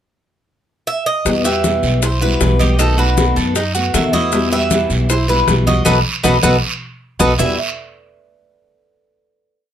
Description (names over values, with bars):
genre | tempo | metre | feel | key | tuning
latin, Cuban son and guajira | 156 BPM | 4/4 | straight | E harmonic minor | A4 = 440 Hz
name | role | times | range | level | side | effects
Cuban tres | melody | 0.9-7.6 s | G4 to F#5 | -18 LUFS | right 1 dB | none
fingerpicked steel-string acoustic guitar | accompaniment | 1.3-7.6 s | E2 to F#4 | -20 LUFS | left 4 dB | none
upright bass | bass | 1.3-7.6 s | B1 to F#2 | -18 LUFS | right 1 dB | none
bongos | percussion | 1.3-7.5 s | none | -24 LUFS | left 5 dB | none
congas | percussion | 1.3-7.5 s | none | -23 LUFS | left 3 dB | none
guiro | percussion | 1.3-7.5 s | none | -25 LUFS | right 5 dB | none
maracas | percussion | 1.3-7.5 s | none | -26 LUFS | left 5 dB | none
Cuban tres | arpeggios | 1.4-7.6 s | D#4 to E5 | -22 LUFS | right 4 dB | none
nylon-string guitar | second line | 1.5-7.6 s | G3 to B4 | -25 LUFS | right 3 dB | none
room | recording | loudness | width
light reverb | close, detailed microphones | -13 LUFS | side -10 dB against mid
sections
0.0-1.3 pickup bar; 1.3-7.4 montuno (vamp); 7.4-8.9 final chord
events
band accent 5.9-7.4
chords
0.0 N.C.; 1.3 Emadd9; 2.8 B7; 4.3 Emadd9; 5.9 B7; 7.4 E5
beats
0.11 0.49 0.87 | 1.26 1.64 2.02 2.41 | 2.79 3.17 3.56 3.94 | 4.33 4.71 5.09 5.48 | 5.86 6.24 6.63 7.01 | 7.39